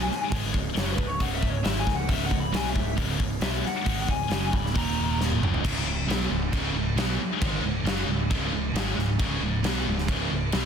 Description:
hard rock; 135 BPM; 4/4; straight; A4 = 440 Hz
lead guitar through a small cranked amp; melody; 0.0-5.2 s; B4 to B5; -31 LUFS; left 4 dB; overdrive, slapback echo
scooped high-gain guitar; riff; 0.0-10.7 s; C#2 to B3; -32 LUFS; left 11 dB; distortion
sludgy distorted guitar; riff; 0.0-10.7 s; C#2 to B3; -32 LUFS; right 11 dB; overdrive
modern bright picked electric bass; bass; 0.0-10.7 s; C#1 to B1; -30 LUFS; equal
big rock drum kit; drums; 0.1-10.6 s; crash cymbal, hi-hat, kick drum, snare drum, toms; -28 LUFS; equal
heavy high-gain guitar; riff; 5.6-10.7 s; C#2 to B3; -33 LUFS; equal; distortion
light reverb; dense, heavily limited modern master; -24 LUFS; side -7 dB against mid
0.0-5.6 A section; 5.6-10.7 B section
lead electric guitar solo 0.0-5.6; drum fill 5.2-5.6
0.0 C#5; 4.8 D#5; 5.4 C#5

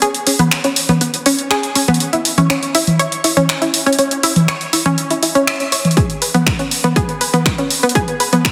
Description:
melodic techno; 121 BPM; 4/4; straight; C# minor; A4 = 440 Hz
analog pluck; arpeggios; 0.0-8.4 s; B3 to E5; -19 LUFS; equal; subtle chorus, sidechain pumping, digital delay
techno drum kit; drums; 0.0-8.5 s; finger snaps, hi-hat, toms; -18 LUFS; equal; overdrive, studio reverb, soft clipping on snare
electronic kick drum; drums; 6.0-8.5 s; -19 LUFS; equal; overdrive, studio reverb
wet lush hall reverb, RT60 2.0 s, digital ambience; dense, heavily limited modern master, high-pass filter; -15 LUFS; mono
0.0-8.5 A section
build-up 0.0-8.5

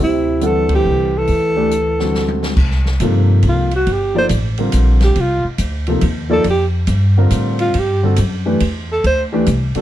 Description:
modal jazz; 139 BPM; 3/4; swing 65% on 8ths; A4 = 440 Hz
breathy alto saxophone; melody; 0.0-9.2 s; E4 to C5; -17 LUFS; right 2 dB
breathy trombone; second line; 0.0-2.4 s; C3 to E3; -22 LUFS; left 4 dB
upright bass; bass; 0.0-9.8 s; G1 to A2; -16 LUFS; equal
warm grand piano; accompaniment; 0.4-9.8 s; C3 to F#5; -19 LUFS; left 1 dB
open jazz drum kit; drums; 0.4-9.8 s; crash cymbal, hi-hat, kick drum, ride cymbal, snare drum, toms; -26 LUFS; equal
light reverb; dark, warm production; -13 LUFS; side -13 dB against mid
0.0-2.6 A section; 2.6-9.8 B section
band accent 0.6; drum fill 2.1-2.6; alto saxophone solo 2.6-9.8
0.0 D9sus4; 2.6 C9sus4; 7.7 D9sus4

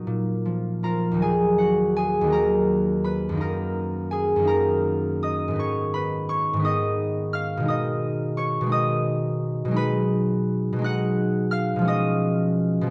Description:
classical, solo harp piece; 56 BPM (dotted quarters); 6/8; uneven beats, rubato; Eb minor; A4 = 440 Hz
concert harp; solo; 0.0-12.9 s; Eb2 to F#6; -24 LUFS; equal
light reverb; dark, warm production; -24 LUFS; mono
0.0-1.2 A section; 1.2-12.9 B section
0.1 Bb5; 1.2 Ebm; 3.4 Ebm/Gb; 5.6 Abm; 7.7 Abm/Cb; 9.8 G#m7/B; 11.9 C#7/B

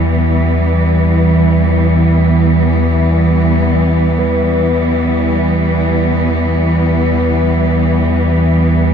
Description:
dark ambient drone; free time; A4 = 440 Hz
dark symphonic cello section; sustained chords; 0.0-8.9 s; E3 to B3; -14 LUFS; equal
deep rumbling drone; drone; 0.0-8.9 s; E2 to E3; -13 LUFS; equal; built-in reverb, phaser
bronze singing bowl; texture; 0.0-8.9 s; B4; -25 LUFS; equal
wet cathedral reverb, RT60 5.3 s; nothing above 7.7 kHz; -10 LUFS; side -7 dB against mid
0.0-4.2 A section; 4.2-8.9 B section
0.0 Em

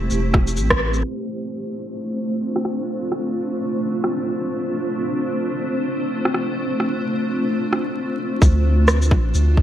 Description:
future garage; 130 BPM; 4/4; swing 60% on 16ths; D minor; A4 = 441 Hz
granular cloud pad; sustained chords; 0.0-9.6 s; A3 to C5; -22 LUFS; equal; built-in reverb, vintage 12-bit sampler grit, sidechain pumping
soft dub sub bass; bass; 0.0-1.0, 8.4-9.6 s; E1 to D2; -18 LUFS; equal; tube saturation, sidechain pumping
electronic shaker and rim click; drums; 0.1-9.5 s; -21 LUFS; right 1 dB; overdrive
electronic kick drum; drums; 0.3-0.8, 8.4-9.6 s; -15 LUFS; equal; overdrive
moderate lush hall reverb, RT60 1.6 s; vinyl crackle, low-pass filter; -19 LUFS; side -11 dB against mid
0.0-1.0 A section; 1.0-8.4 B section; 8.4-9.6 C section
band accent 0.7; filter sweep 1.0-8.4
0.0 Am7; 1.0 Dm7

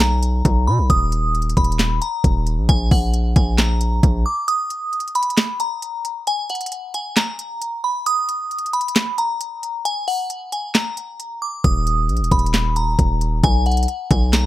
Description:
hip hop, trap; 134 BPM; 4/4; half-time; Eb harmonic minor; A4 = 439 Hz
glassy synth bell; melody; 0.0-14.5 s; F#5 to Eb6; -22 LUFS; equal; chorus, phaser
distorted 808-style bass; bass; 0.0-4.2, 11.6-14.5 s; Eb1 to B2; -18 LUFS; equal; distortion
trap drum kit; drums; 0.0-14.4 s; handclaps, hi-hat, kick drum, snare drum; -19 LUFS; equal; overdrive
little or no reverb; -17 LUFS; side -15 dB against mid
0.0-14.5 A section
break 4.5-11.6
0.0 B5; 0.9 Eb5; 2.7 Bb7(#5, no3); 4.5 N.C.; 11.6 Eb5; 13.4 B5

